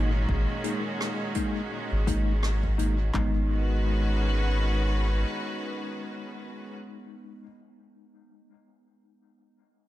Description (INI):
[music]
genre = ambient dub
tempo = 84 BPM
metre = 4/4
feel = swing 57% on 16ths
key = G# minor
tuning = A4 = 439 Hz
[part]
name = clear symphonic string section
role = sustained chords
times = 0.0-6.8 s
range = A#2 to B4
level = -32 LUFS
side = right 1 dB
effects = none
[part]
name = bell-like tine electric piano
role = stabs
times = 0.0-7.5 s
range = G#3 to D#4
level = -34 LUFS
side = left 3 dB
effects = fast stereo tremolo, vintage 12-bit sampler grit, low-pass filter, dub echo
[part]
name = soft dub sub bass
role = bass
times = 0.0-5.2 s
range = G#1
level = -25 LUFS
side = equal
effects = none
[part]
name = deep house drum kit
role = drums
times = 0.3-3.3 s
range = handclaps, kick drum, toms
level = -32 LUFS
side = equal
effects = overdrive
[part]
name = jazz brush drum kit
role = drums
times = 0.6-3.0 s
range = hi-hat, rim click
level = -38 LUFS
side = right 2 dB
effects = dub echo
[sound]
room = light reverb, studio reverb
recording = none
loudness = -25 LUFS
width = side -15 dB against mid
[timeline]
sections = 0.0-3.1 A section; 3.1-6.0 B section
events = filter sweep on tine electric piano 0.0-3.1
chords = 0.0 G#sus2; 3.1 G#m